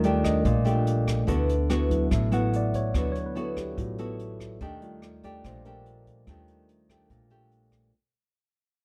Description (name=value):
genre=bossa nova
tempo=144 BPM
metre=4/4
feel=straight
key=unclear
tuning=A4 = 439 Hz
part: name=bright tine electric piano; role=accompaniment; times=0.0-8.0 s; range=F#3 to F#5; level=-32 LUFS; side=equal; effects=none
part: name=nylon-string guitar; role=accompaniment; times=0.0-7.9 s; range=A2 to G4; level=-31 LUFS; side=equal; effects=none
part: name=upright bass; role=bass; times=0.0-7.9 s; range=A1 to Eb2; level=-31 LUFS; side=equal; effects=none
part: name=jazz brush drum kit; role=drums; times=0.0-7.8 s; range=hi-hat, kick drum, rim click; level=-36 LUFS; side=equal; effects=none
room=light reverb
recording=dark, warm production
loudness=-26 LUFS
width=mono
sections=0.0-7.9 A section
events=fade-out 0.0-7.9; tine electric piano solo 0.0-7.9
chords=0.0 Ebmaj9#11; 1.3 D69; 4.6 Ebmaj9#11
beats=0.04 0.45 0.87 | 1.28 1.70 2.11 2.53 | 2.94 3.36 3.77 4.19 | 4.61 5.02 5.44 5.85 | 6.27 6.68 7.10 7.51